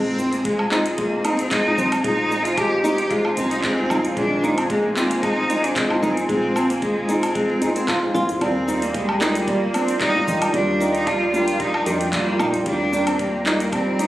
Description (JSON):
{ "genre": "organic downtempo", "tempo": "113 BPM", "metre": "4/4", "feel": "swing 54% on 16ths", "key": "Bb mixolydian", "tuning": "A4 = 439 Hz", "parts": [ { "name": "clear cello", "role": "melody", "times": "0.0-14.1 s", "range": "Ab3 to G4", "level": "-23 LUFS", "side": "equal", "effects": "tape echo" }, { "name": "felt-muted upright piano", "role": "accompaniment", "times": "0.0-14.1 s", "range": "Eb3 to D5", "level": "-27 LUFS", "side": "left 1 dB", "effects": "sidechain pumping, ping-pong delay" }, { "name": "warm analog pad", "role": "sustained chords", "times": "0.1-14.1 s", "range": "F4 to Bb5", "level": "-27 LUFS", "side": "right 1 dB", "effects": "chorus, sidechain pumping" }, { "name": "flamenco guitar", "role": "arpeggios", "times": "0.0-14.1 s", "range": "G3 to F4", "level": "-23 LUFS", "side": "equal", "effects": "ping-pong delay" }, { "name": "woody FM bass", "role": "bass", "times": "0.0-14.0 s", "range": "Eb1 to F2", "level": "-33 LUFS", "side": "equal", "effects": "tube saturation, sidechain pumping" }, { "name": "afro-pop drum kit", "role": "drums", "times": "0.2-14.1 s", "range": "handclaps, hi-hat, shaker, woodblock", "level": "-27 LUFS", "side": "equal", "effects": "none" }, { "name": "djembe", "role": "percussion", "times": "0.2-13.7 s", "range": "none", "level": "-38 LUFS", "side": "left 1 dB", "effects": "none" }, { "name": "electronic kick drum", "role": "drums", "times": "0.5-13.8 s", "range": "none", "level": "-35 LUFS", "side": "equal", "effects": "none" } ], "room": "moderate lush hall reverb, RT60 2.1 s", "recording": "recorded on a phone in the room, studio reverb, compression", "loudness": "-18 LUFS", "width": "side -15 dB against mid", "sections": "0.0-14.1 A section", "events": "none", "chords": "0.0 Bb9sus4; 8.4 Ebmaj9" }